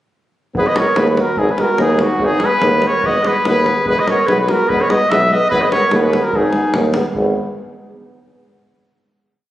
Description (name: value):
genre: balkan folk, Balkan brass band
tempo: 145 BPM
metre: 2/4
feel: swing 54% on 16ths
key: G# minor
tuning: A4 = 439 Hz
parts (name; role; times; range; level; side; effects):
- davul; percussion; 0.5-7.3 s; none; -24 LUFS; left 2 dB; none
- warm trumpet; melody; 0.6-6.8 s; F#4 to E5; -16 LUFS; equal; none
- warm clarinet; second line; 0.6-6.7 s; D#4 to B4; -22 LUFS; right 1 dB; none
- clear euphonium; accompaniment; 0.6-7.3 s; B3; -24 LUFS; left 3 dB; none
- dark euphonium; accompaniment; 0.6-7.3 s; G#3; -24 LUFS; right 2 dB; none
- warm tuba; bass; 0.6-7.3 s; E1 to D#2; -19 LUFS; equal; none
room: moderate concert hall reverb, RT60 2.0 s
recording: recorded on a phone in the room, studio reverb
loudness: -13 LUFS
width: side -14 dB against mid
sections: 0.6-7.1 A section; 7.1-8.0 final chord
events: none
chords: 0.6 G#m; 3.9 E; 5.5 G#m